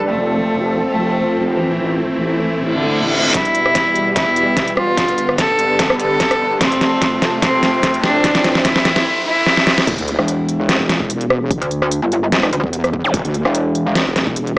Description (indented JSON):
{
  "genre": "heavy wobble dubstep",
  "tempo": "147 BPM",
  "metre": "4/4",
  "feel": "swing 54% on 16ths, half-time",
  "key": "unclear",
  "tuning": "A4 = 443 Hz",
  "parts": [
    { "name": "supersaw chords", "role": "sustained chords", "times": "0.0-9.0 s", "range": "E2 to A4", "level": "-21 LUFS", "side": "equal", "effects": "sidechain pumping" },
    { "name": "wobble bass", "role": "bass", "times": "0.0-3.3, 9.9-14.6 s", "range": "E1 to E2", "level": "-22 LUFS", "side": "equal", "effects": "chorus, overdrive" },
    { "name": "warbly tape-like pad", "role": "texture", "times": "0.0-9.1 s", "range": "B3 to B5", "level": "-24 LUFS", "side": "equal", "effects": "chorus, built-in reverb, sidechain pumping" },
    { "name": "clear cello", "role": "melody", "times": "0.1-9.8 s", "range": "D3 to A4", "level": "-17 LUFS", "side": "equal", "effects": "none" },
    { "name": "reverse cymbal, riser, sub drop and zap", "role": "sound effects", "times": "2.7-13.1 s", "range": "none", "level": "-24 LUFS", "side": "equal", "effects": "none" },
    { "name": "dubstep drum kit", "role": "drums", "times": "3.3-14.5 s", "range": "crash cymbal, hi-hat, rim click, snare drum", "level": "-17 LUFS", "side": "equal", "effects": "none" },
    { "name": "electronic kick drum", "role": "drums", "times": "3.3-14.3 s", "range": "none", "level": "-25 LUFS", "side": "equal", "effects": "none" },
    { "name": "pulsing pluck wobble bass", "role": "bass", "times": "10.2-14.0 s", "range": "E1 to D2", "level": "-16 LUFS", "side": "equal", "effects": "chorus, overdrive" }
  ],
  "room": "moderate lush hall reverb, RT60 1.9 s",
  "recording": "small speaker sound",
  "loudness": "-13 LUFS",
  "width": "side -22 dB against mid",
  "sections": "0.0-3.3 A section; 3.3-9.9 B section; 9.9-14.6 C section",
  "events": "reverse cymbal 2.7-3.3; build-up 3.3-9.9; drum fill 3.3-9.1, 9.5-9.9; drop 9.9-14.6; impact 9.9-11.5",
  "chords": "0.1 F; 1.7 Am; 3.3 Em; 5.0 G; 6.6 F; 8.2 Am; 9.9 N.C."
}